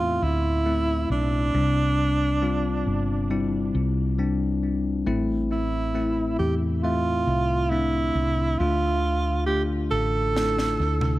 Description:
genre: pop ballad.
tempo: 68 BPM.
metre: 4/4.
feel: straight.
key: A minor.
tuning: A4 = 438 Hz.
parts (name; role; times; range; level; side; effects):
clear alto saxophone; melody; 0.0-11.2 s; D4 to A4; -26 LUFS; right 3 dB; tape echo.
bell-like tine electric piano; accompaniment; 0.0-11.2 s; A2 to E5; -26 LUFS; left 3 dB; tape echo.
woody fretless electric bass; bass; 0.0-11.2 s; G1 to E2; -26 LUFS; equal; analog chorus.
modern studio drum kit; drums; 10.4-11.2 s; snare drum, toms; -29 LUFS; equal; tape echo.
room: light reverb, small room ambience.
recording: echo-heavy mix.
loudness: -22 LUFS.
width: side -16 dB against mid.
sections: 0.0-11.2 A section.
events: drum fill 10.4-11.2.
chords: 0.0 Am; 1.5 Csus2; 5.1 Am; 8.6 Dm.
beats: 0.65 | 1.54 2.42 3.30 4.18 | 5.07 5.95 6.83 7.71 | 8.59 9.48 10.36.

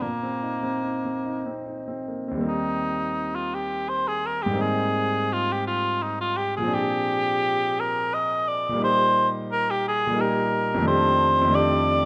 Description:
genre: classical, impressionist duo for cor anglais and grand piano.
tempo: 72-91 BPM.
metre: 3/4.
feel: rubato.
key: Eb major.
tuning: A4 = 445 Hz.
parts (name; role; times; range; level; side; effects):
warm cor anglais; melody; 0.0-12.1 s; Bb3 to Eb5; -26 LUFS; equal; none.
clear concert grand piano; accompaniment; 0.0-12.1 s; Eb2 to Ab4; -29 LUFS; equal; none.
room: moderate recital hall reverb, RT60 1.8 s.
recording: none.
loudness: -24 LUFS.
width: mono.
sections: 0.0-2.5 A section; 2.5-12.1 B section.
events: none.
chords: 0.0 Bbsus24; 2.5 Eb6; 4.6 Abmaj9; 6.7 Bb13; 8.9 Eb/Bb; 10.9 F13.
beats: | 0.01 0.83 1.65 | 2.46 3.18 3.90 | 4.62 5.34 6.04 | 6.74 7.45 8.15 | 8.86 9.55 10.23 | 10.91 11.58.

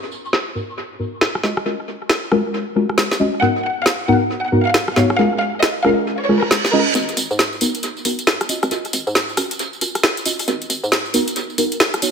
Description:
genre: UK garage, two-step garage.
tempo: 136 BPM.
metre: 4/4.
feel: swing 62% on 16ths.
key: G# dorian.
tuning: A4 = 443 Hz.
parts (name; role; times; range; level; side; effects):
garage drum kit; drums; 0.3-12.1 s; hi-hat, rim click, snare drum, tambourine; -19 LUFS; equal; high-pass filter on snare, low-pass filter on snare, high-pass filter on hats, low-pass filter on hats, high-pass filter on perc, low-pass filter on perc, dub echo.
deep mellow chord stab; stabs; 0.6-12.1 s; G#2 to D#5; -19 LUFS; equal; chorus, tape echo.
clear studio violin section; melody; 3.4-6.9 s; A#4 to F#5; -21 LUFS; equal; analog delay.
reverse cymbal; sound effects; 6.3-6.9 s; none; -23 LUFS; right 5 dB; none.
hollow knocking FM bass; bass; 7.0-11.9 s; G#1 to G#2; -25 LUFS; equal; high-pass filter.
room: moderate echo chamber reverb, RT60 1.4 s.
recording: echo-heavy mix.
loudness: -16 LUFS.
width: side -6 dB against mid.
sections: 0.0-6.9 A section; 6.9-12.1 B section.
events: filter sweep on synth stab 0.0-6.9; reverse cymbal 6.3-6.9; build-up 6.9-12.1.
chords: 0.0 G#m9; 1.4 D#m9/G#; 3.4 G#m9; 5.2 A#m7/G#; 6.9 G#m9; 8.5 D#m9/G#; 10.5 G#m9.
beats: 0.33 0.77 1.21 | 1.65 2.10 2.54 2.98 | 3.42 3.86 4.30 4.74 | 5.18 5.62 6.07 6.51 | 6.95 7.39 7.83 8.27 | 8.71 9.15 9.60 10.04 | 10.48 10.92 11.36 11.80.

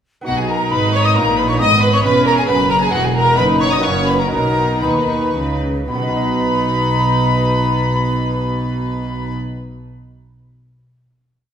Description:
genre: classical, baroque-style concerto movement with solo episodes.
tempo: 107-136 BPM.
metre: 3/4.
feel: straight.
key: B major.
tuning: A4 = 444 Hz.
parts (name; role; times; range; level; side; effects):
lute; accompaniment; 0.2-9.6 s; E2 to D#5; -28 LUFS; equal; none.
baroque flute; melody; 0.3-9.3 s; F#5 to D#6; -21 LUFS; left 1 dB; none.
warm chamber violin section; melody; 0.3-9.3 s; F#5 to D#6; -22 LUFS; left 4 dB; none.
warm chamber violin section; second line; 0.3-9.3 s; F#4 to D#5; -21 LUFS; right 1 dB; none.
dark chamber viola section; accompaniment; 0.3-9.3 s; B3 to D#4; -23 LUFS; left 1 dB; none.
rich chamber double bass section; bass; 0.3-9.3 s; E1 to D#2; -21 LUFS; right 2 dB; none.
warm chamber cello section; bass; 0.3-9.3 s; E2 to D#3; -23 LUFS; right 2 dB; none.
room: wet recital hall reverb, RT60 1.7 s.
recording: recorded in a church or concert hall.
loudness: -14 LUFS.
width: side -8 dB against mid.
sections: 0.3-5.9 ritornello; 5.9-9.2 final chord.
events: slowing down 2.3-5.9.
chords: 0.3 B; 1.6 G#m; 2.9 E; 3.4 B/F#; 3.8 F#7; 4.3 B.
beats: | 0.27 0.71 1.16 | 1.60 2.04 2.48 | 2.93 3.38 3.84 | 4.32 4.82 5.34 | 5.89 6.44 7.00 | 7.56 8.12 8.67.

